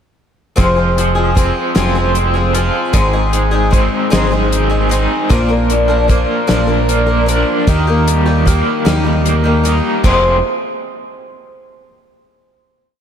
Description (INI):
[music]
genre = folk rock and heartland rock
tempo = 51 BPM (dotted quarters)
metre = 6/8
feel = straight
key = F dorian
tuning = A4 = 439 Hz
[part]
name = picked twelve-string acoustic guitar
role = accompaniment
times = 0.6-10.4 s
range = F2 to Bb4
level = -17 LUFS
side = left 2 dB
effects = slapback echo
[part]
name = raw garage guitar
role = riff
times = 0.6-10.4 s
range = F2 to F4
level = -17 LUFS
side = right 1 dB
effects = overdrive, tremolo, slapback echo
[part]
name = fingered electric bass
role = bass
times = 0.6-10.4 s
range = F1 to Eb2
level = -16 LUFS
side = right 1 dB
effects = none
[part]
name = damped 70s drum kit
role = drums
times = 0.6-10.2 s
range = crash cymbal, hi-hat, kick drum, snare drum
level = -17 LUFS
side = equal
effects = none
[sound]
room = moderate lush hall reverb, RT60 2.6 s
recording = big arena sound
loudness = -11 LUFS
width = side -8 dB against mid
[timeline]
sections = 0.6-10.0 verse; 10.0-12.4 final chord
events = none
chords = 0.6 Fm; 2.9 Ab; 5.3 Bb; 7.7 Eb; 10.0 Fm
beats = | 0.58 1.76 | 2.95 4.13 | 5.31 6.49 | 7.68 8.86 | 10.04